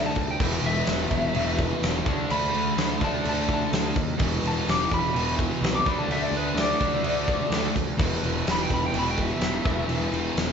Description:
hard rock; 126 BPM; 4/4; straight; A4 = 439 Hz
lightly driven lead guitar; melody; 0.0-10.5 s; B4 to D6; -29 LUFS; left 2 dB
sludgy distorted guitar; riff; 0.0-10.5 s; E2 to D4; -28 LUFS; equal; overdrive
fuzz picked electric bass; bass; 0.0-10.5 s; E1 to D#2; -30 LUFS; equal; overdrive
big rock drum kit; drums; 0.2-10.5 s; crash cymbal, kick drum, snare drum; -27 LUFS; equal
moderate large studio reverb, RT60 1.3 s; band playing live in one room, nothing above 7.6 kHz; -22 LUFS; side -6 dB against mid
0.0-10.5 A section
lead electric guitar solo 0.0-10.5
0.4 E5; 2.1 D5; 4.2 E5; 5.9 D5; 8.0 E5
| 0.40 0.87 1.35 1.82 | 2.29 2.77 3.24 3.72 | 4.19 4.67 5.14 5.62 | 6.09 6.57 7.04 7.51 | 7.99 8.46 8.94 9.41 | 9.89 10.37

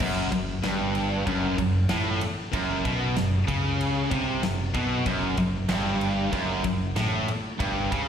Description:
heavy metal; 95 BPM; 4/4; straight; F# phrygian; A4 = 439 Hz
distorted electric guitar; riff; 0.0-8.1 s; F#2 to C#3; -32 LUFS; equal; distortion, slapback echo
heavy high-gain guitar; riff; 0.0-8.1 s; F#2 to C#3; -28 LUFS; left 6 dB; distortion, slapback echo
tight distorted guitar; riff; 0.0-8.1 s; F#2 to C#3; -28 LUFS; right 7 dB; distortion, slapback echo
growling fingered electric bass; bass; 0.0-8.1 s; F#1 to C#2; -32 LUFS; equal; overdrive
modern studio drum kit; drums; 0.0-8.1 s; crash cymbal, kick drum, ride cymbal, snare drum; -33 LUFS; equal
small room ambience; live gig heard through the venue's PA, recital hall reverb; -23 LUFS; side -8 dB against mid
0.0-8.1 A section
0.0 F#m
| 0.01 0.64 1.27 1.90 | 2.53 3.17 3.80 4.43 | 5.06 5.70 6.33 6.97 | 7.60

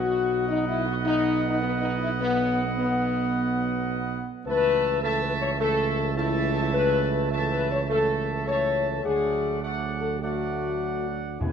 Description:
classical; 105 BPM; 4/4; straight; A4 = 440 Hz
clear trumpet section; melody; 0.0-11.5 s; B4 to A5; -30 LUFS; right 1 dB
bright trombone section; sustained chords; 0.0-11.5 s; B2 to B3; -34 LUFS; right 4 dB
dark French horn section; sustained chords; 0.0-11.5 s; B3 to C#5; -26 LUFS; left 4 dB
mellow tuba; bass; 0.0-11.5 s; B1 to E2; -29 LUFS; right 6 dB
timpani; percussion; 11.4-11.5 s; E2; -25 LUFS; equal
moderate concert hall reverb, RT60 2.4 s; -23 LUFS; side -7 dB against mid
0.0-11.5 A section
0.0 B; 4.5 A/C#; 9.1 D
0.49 1.06 1.62 | 2.19 2.77 3.34 3.90 | 4.46 5.03 5.60 6.17 | 6.74 7.32 7.90 8.47 | 9.05 9.63 10.21 10.80 | 11.41

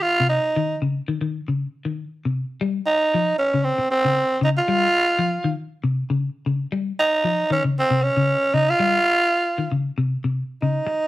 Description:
afrobeat; 116 BPM; 4/4; swing 53% on 16ths; A4 = 439 Hz
growling tenor saxophone; melody; 0.0-11.1 s; C4 to F4; -19 LUFS; right 2 dB
clean electric guitar; arpeggios; 0.2-10.9 s; C3 to G3; -22 LUFS; left 3 dB; lush chorus
moderate studio reverb, RT60 0.7 s; -19 LUFS; side -16 dB against mid
0.0-2.6 A section; 2.6-11.1 B section
0.0 Cm; 2.6 Csus4
0.05 | 0.56 1.08 1.59 2.11 | 2.62 3.14 3.65 4.17 | 4.68 5.20 5.71 6.22 | 6.74 7.25 7.77 8.29 | 8.80 9.32 9.83 10.35 | 10.86

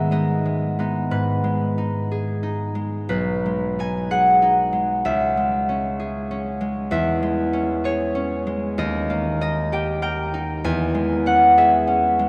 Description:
classical, solo harp piece; 55-67 BPM (dotted quarters); 6/8; rubato; G# minor; A4 = 439 Hz
concert harp; solo; 0.0-12.3 s; B1 to G#5; -21 LUFS; equal
wet cathedral reverb, RT60 6.0 s; in a vast, echoing space; -21 LUFS; mono
0.0-1.1 A section; 1.1-12.3 B section
0.0 G#m; 3.1 G#m/B; 5.1 C#m; 6.9 C#m/E; 8.8 D#; 10.7 C#m/E
0.10 | 1.11 2.10 | 3.09 4.12 | 5.07 6.02 | 6.92 7.86 | 8.80 9.73 | 10.66 11.58

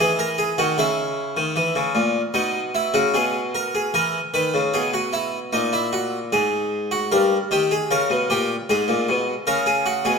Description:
classical, baroque-style two-part invention for harpsichord; 76 BPM; 4/4; straight; A4 = 442 Hz
harpsichord; solo; 0.0-10.2 s; G2 to B4; -19 LUFS; equal
wet recital hall reverb, RT60 1.5 s; minimal, uncompressed stereo recording; -19 LUFS; side -5 dB against mid
0.0-3.9 A section; 3.9-10.2 B section
0.0 B (rootless); 0.8 C#m; 2.4 G#m/B; 5.5 F#13; 7.1 D#7/G; 8.7 G#m
0.00 | 0.78 1.57 2.35 3.15 | 3.94 4.74 5.53 6.32 | 7.12 7.90 8.68 9.47

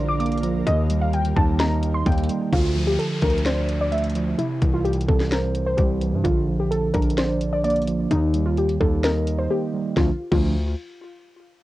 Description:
hip hop, trap; 129 BPM; 4/4; half-time; D minor; A4 = 440 Hz
warbly dusty pluck; melody; 0.0-10.5 s; Eb4 to D6; -25 LUFS; left 1 dB; chorus, cassette tape, tape echo
mellow tine electric piano; accompaniment; 0.0-10.5 s; C3 to Eb5; -25 LUFS; right 4 dB; cassette tape
ethereal airy pad; sustained chords; 0.0-2.5 s; D3 to Bb4; -36 LUFS; left 1 dB; ensemble chorus, built-in reverb, cassette tape
distorted 808-style bass; bass; 0.0-10.8 s; Bb1 to G2; -24 LUFS; left 1 dB; distortion, tube saturation
trap drum kit; drums; 0.2-10.4 s; crash cymbal, hi-hat, kick drum, snare drum; -24 LUFS; left 1 dB; cassette tape
downlifter; sound effects; 2.5-6.2 s; -36 LUFS; left 1 dB
light reverb; home recording on cassette; -19 LUFS; side -16 dB against mid
0.0-2.5 A section; 2.5-10.0 B section; 10.0-11.6 C section
break 9.5-10.0
0.0 Bb; 0.7 Eb; 2.5 Dm; 4.4 C; 6.2 Bb; 8.1 Eb; 10.0 Dm
0.20 | 0.67 1.13 1.60 2.06 | 2.53 2.99 3.46 3.92 | 4.39 4.85 5.32 5.78 | 6.25 6.71 7.18 7.64 | 8.11 8.57 9.04 9.50 | 9.97 10.43

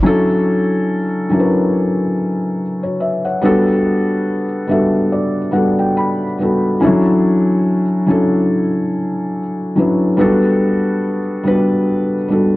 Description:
hip hop; 71 BPM; 4/4; swing 59% on 16ths; D major; A4 = 440 Hz
felt-muted upright piano; accompaniment; 0.0-12.6 s; E3 to B5; -13 LUFS; equal; cassette tape, low-pass filter
moderate spring reverb, RT60 2.3 s; dark, warm production; -13 LUFS; side -18 dB against mid
0.0-12.6 A section
felt piano fill 4.3-6.8
0.0 Dmaj9; 3.4 Gmaj9; 6.8 Dmaj9; 10.2 Gmaj9
| 0.04 0.89 1.73 2.58 | 3.42 4.27 5.11 5.96 | 6.80 7.65 8.49 9.34 | 10.18 11.03 11.87

